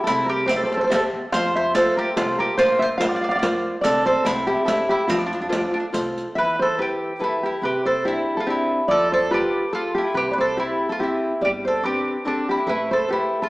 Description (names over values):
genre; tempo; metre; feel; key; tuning
italian folk, Italian serenade; 143 BPM; 3/4; swing 54% on 8ths; F major, C major from 6.4 s; A4 = 440 Hz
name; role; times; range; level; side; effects
nylon-string guitar; melody; 0.0-13.5 s; F4 to F5; -23 LUFS; equal; none
mandolin; second line; 0.0-13.5 s; C4 to D5; -23 LUFS; equal; none
nylon-string guitar; accompaniment; 0.1-13.4 s; C3 to E5; -26 LUFS; left 1 dB; none
upright bass; bass; 0.1-13.2 s; G1 to G2; -40 LUFS; equal; none
riq; percussion; 0.1-6.3 s; none; -29 LUFS; right 1 dB; none
room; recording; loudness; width
wet recital hall reverb, RT60 1.6 s; small speaker sound; -19 LUFS; side -21 dB against mid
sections
0.0-6.4 A section; 6.4-13.5 B section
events
none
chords
0.1 C; 1.3 F; 2.6 Bbsus2; 3.8 Amadd11/C; 4.3 C; 5.1 F; 6.4 Em; 7.6 Cadd9; 8.9 Fadd9; 10.1 C; 11.4 Gsus4; 12.7 Amadd9